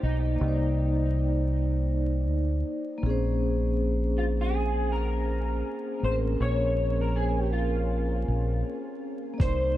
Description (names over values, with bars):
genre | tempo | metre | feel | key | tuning
lo-fi hip hop | 80 BPM | 4/4 | swing 63% on 16ths | unclear | A4 = 440 Hz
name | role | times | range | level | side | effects
electric guitar through a small old amp | melody | 0.0-9.8 s | Eb4 to Db5 | -33 LUFS | equal | ensemble chorus, diffuse ambient delay
vibraphone with soft mallets | accompaniment | 0.0-9.8 s | Bb3 to D5 | -30 LUFS | left 1 dB | cassette tape
deep dub fingered electric bass | bass | 0.0-9.8 s | A1 to D2 | -26 LUFS | equal | none
dusty soul sampler-style drum kit | drums | 9.4-9.6 s | hi-hat, kick drum | -26 LUFS | equal | overdrive
room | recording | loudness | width
moderate huge ambient reverb, RT60 7.8 s | dreamy mix soaked in reverb, vinyl crackle | -25 LUFS | side -14 dB against mid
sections
0.0-9.8 A section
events
none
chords
0.0 Cm9; 3.0 Bbm9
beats
| 0.40 1.15 1.90 2.65 | 3.40 4.15 4.90 5.65 | 6.40 7.15 7.90 8.65 | 9.40